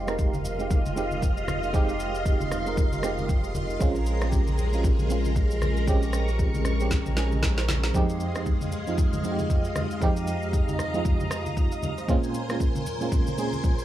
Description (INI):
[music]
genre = amapiano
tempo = 116 BPM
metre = 4/4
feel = swing 58% on 16ths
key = F minor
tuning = A4 = 440 Hz
[part]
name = FM electric piano with tremolo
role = accompaniment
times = 0.0-13.8 s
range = F2 to F5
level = -29 LUFS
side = right 2 dB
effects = none
[part]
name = string machine, violins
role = sustained chords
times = 0.0-13.8 s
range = Ab3 to Db6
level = -32 LUFS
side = left 1 dB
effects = ensemble chorus, sidechain pumping
[part]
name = warm sub bass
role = bass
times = 0.0-7.9 s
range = F1 to Bb1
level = -28 LUFS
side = equal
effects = none
[part]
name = deep house drum kit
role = drums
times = 0.1-13.8 s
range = kick drum, rim click, shaker, snare drum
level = -26 LUFS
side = equal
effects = none
[part]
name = congas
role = percussion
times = 0.3-13.8 s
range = none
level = -34 LUFS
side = left 1 dB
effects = none
[sound]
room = little or no reverb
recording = none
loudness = -23 LUFS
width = side -13 dB against mid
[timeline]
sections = 0.0-13.8 A section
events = drum fill 6.9-7.9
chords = 0.0 Fm7; 3.8 Bbm9; 7.9 Fm7; 12.1 Bbm9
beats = 0.19 0.70 1.22 | 1.74 2.26 2.77 3.29 | 3.81 4.33 4.84 5.36 | 5.88 6.39 6.91 7.43 | 7.95 8.46 8.98 9.50 | 10.02 10.53 11.05 11.57 | 12.09 12.60 13.12 13.64